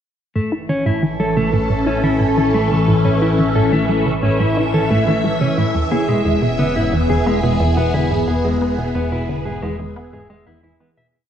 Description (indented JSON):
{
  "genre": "ambient, sequencer-driven space music",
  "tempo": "89 BPM",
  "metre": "4/4",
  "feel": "straight",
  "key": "A major",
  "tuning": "A4 = 438 Hz",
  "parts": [
    { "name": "phased string machine", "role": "sustained chords", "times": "0.8-11.1 s", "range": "E3 to E5", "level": "-19 LUFS", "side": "equal", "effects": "ensemble chorus, phaser" },
    { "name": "mellow electric guitar", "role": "arpeggios", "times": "0.4-11.1 s", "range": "G#3 to E5", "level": "-22 LUFS", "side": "left 1 dB", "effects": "auto-pan, tape echo" },
    { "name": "resonant blip pluck", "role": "riff", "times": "0.4-11.1 s", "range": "E2 to E4", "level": "-20 LUFS", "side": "right 1 dB", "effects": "chorus, cassette tape, tape echo" }
  ],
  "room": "wet concert hall reverb, RT60 2.2 s",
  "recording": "worn, warbling old tape, cassette tape, warbly pitch drift",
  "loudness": "-15 LUFS",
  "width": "side -9 dB against mid",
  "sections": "0.4-11.1 A section",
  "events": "filter sweep on synth arpeggio sound 0.4-11.1; fade-out 7.5-11.1",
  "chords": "0.4 A; 5.7 E"
}